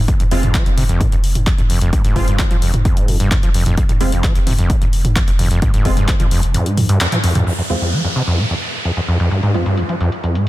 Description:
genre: driving peak-time techno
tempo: 130 BPM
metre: 4/4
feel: straight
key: F minor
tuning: A4 = 440 Hz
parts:
  - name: saturated sub bass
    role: bass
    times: 0.0-6.5 s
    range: F1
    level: -19 LUFS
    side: equal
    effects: overdrive, sidechain pumping, low-pass filter
  - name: overdriven acid bass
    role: riff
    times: 0.1-10.5 s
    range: E2 to F3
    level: -18 LUFS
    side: equal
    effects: distortion, sidechain pumping, dub echo
  - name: electronic kick drum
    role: drums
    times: 0.1-6.2 s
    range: none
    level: -16 LUFS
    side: equal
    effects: overdrive
  - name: punchy analog drum machine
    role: drums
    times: 0.1-10.5 s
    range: crash cymbal, handclaps, hi-hat, toms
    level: -21 LUFS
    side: equal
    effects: overdrive, sidechain pumping on hats, low-pass filter on hats, sidechain pumping on toms, low-pass filter on toms, low-pass filter on snare, sidechain pumping on cymbals, low-pass filter on cymbals
  - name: rave stab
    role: stabs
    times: 0.3-9.6 s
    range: Ab3 to F4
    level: -26 LUFS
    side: right 1 dB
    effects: chorus, built-in reverb, sidechain pumping, dub echo
  - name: downlifter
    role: sound effects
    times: 7.5-10.5 s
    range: none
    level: -24 LUFS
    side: right 1 dB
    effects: none
room: light reverb, digital ambience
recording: dense, heavily limited modern master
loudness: -13 LUFS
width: side -16 dB against mid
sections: 0.0-7.5 A section; 7.5-10.5 B section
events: band accent 7.0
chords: 0.0 Fm

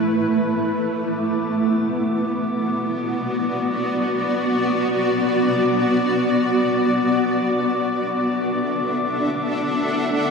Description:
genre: ambient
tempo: free time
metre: none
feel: none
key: B minor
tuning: A4 = 440 Hz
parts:
  - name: granular cloud pad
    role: sustained chords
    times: 0.0-10.3 s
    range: A3 to F#5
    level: -19 LUFS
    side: equal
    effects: built-in reverb, shimmer reverb
  - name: glass harmonica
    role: texture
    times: 0.0-10.3 s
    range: B5 to D6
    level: -29 LUFS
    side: left 2 dB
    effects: shimmer reverb
room: wet huge ambient reverb, RT60 8.2 s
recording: dreamy mix soaked in reverb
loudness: -18 LUFS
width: side -5 dB against mid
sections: 0.0-10.3 A section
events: none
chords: 0.0 Asus2; 0.9 Bmadd11; 7.4 Bm7

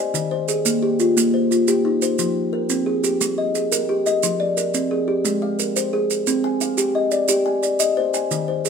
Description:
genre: southern african traditional, mbira-style interlocking cycle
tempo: 118 BPM (dotted quarters)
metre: 12/8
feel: straight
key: unclear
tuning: A4 = 442 Hz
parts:
  - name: kalimba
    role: arpeggios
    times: 0.0-8.7 s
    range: Eb3 to Ab5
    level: -18 LUFS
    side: left 1 dB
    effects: none
  - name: maracas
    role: percussion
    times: 0.1-8.7 s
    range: none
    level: -24 LUFS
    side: right 9 dB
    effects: none
room: light reverb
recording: band playing live in one room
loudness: -18 LUFS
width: side -6 dB against mid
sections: 0.0-8.7 A section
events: none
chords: 0.1 Eb; 2.2 Fm; 3.2 Gm; 4.2 Fm; 5.2 Ab; 6.3 Cm

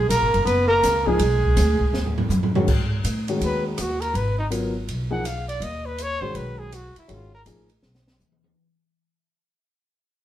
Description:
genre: modal jazz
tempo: 164 BPM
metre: 4/4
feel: swing 64% on 8ths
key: G# dorian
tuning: A4 = 440 Hz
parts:
  - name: warm trumpet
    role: melody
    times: 0.0-7.4 s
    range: D#4 to F#5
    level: -25 LUFS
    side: right 1 dB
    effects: none
  - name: breathy tenor saxophone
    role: second line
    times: 0.0-2.3 s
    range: G#3 to B3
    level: -24 LUFS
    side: right 1 dB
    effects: none
  - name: upright bass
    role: bass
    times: 0.0-8.5 s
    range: F#1 to A2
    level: -25 LUFS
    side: equal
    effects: none
  - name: open jazz drum kit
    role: drums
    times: 0.1-8.5 s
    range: crash cymbal, hi-hat, kick drum, ride cymbal, rim click, snare drum, toms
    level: -27 LUFS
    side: right 1 dB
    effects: none
  - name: warm grand piano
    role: accompaniment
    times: 1.1-7.7 s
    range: D#3 to A#4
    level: -27 LUFS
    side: left 2 dB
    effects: none
room: moderate stone room reverb, RT60 1.0 s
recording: band playing live in one room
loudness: -20 LUFS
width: side -12 dB against mid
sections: 0.0-2.7 A section; 2.7-8.6 B section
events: drum fill 1.9-2.7, 7.8-8.6; fade-out 2.7-8.6; trumpet solo 2.7-8.6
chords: 0.0 G#m9; 2.7 G#m7

